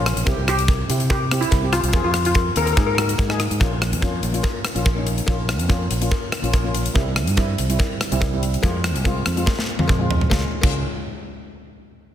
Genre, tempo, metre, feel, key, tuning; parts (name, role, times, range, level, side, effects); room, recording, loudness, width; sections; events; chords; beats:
calypso; 143 BPM; 4/4; straight; A4 = 440 Hz
steel pan; accompaniment; 0.0-10.8 s; G3 to Ab4; -27 LUFS; left 1 dB
fingered electric bass; bass; 0.0-10.8 s; Bb1 to C3; -23 LUFS; equal
tight metal drum kit; drums; 0.1-10.7 s; crash cymbal, hi-hat, kick drum, rim click, snare drum, toms; -21 LUFS; equal; soft clipping on snare
cowbell; percussion; 0.3-10.8 s; -34 LUFS; left 8 dB
steel pan; melody; 0.5-3.1 s; E4 to Bb4; -23 LUFS; left 2 dB
light reverb, studio ambience; dense, heavily limited modern master; -18 LUFS; side -10 dB against mid
0.0-3.6 A section; 3.6-10.3 B section; 10.3-12.0 C section
drum fill 9.5-10.3
0.3 C; 1.9 Fm7; 2.8 Absus2; 3.6 Bbm; 7.0 C; 8.6 Fm; 10.3 Db
| 0.26 0.68 1.10 1.52 | 1.93 2.35 2.77 3.19 | 3.60 4.02 4.44 4.86 | 5.28 5.70 6.12 6.54 | 6.96 7.38 7.79 8.21 | 8.63 9.05 9.47 9.89 | 10.31 10.73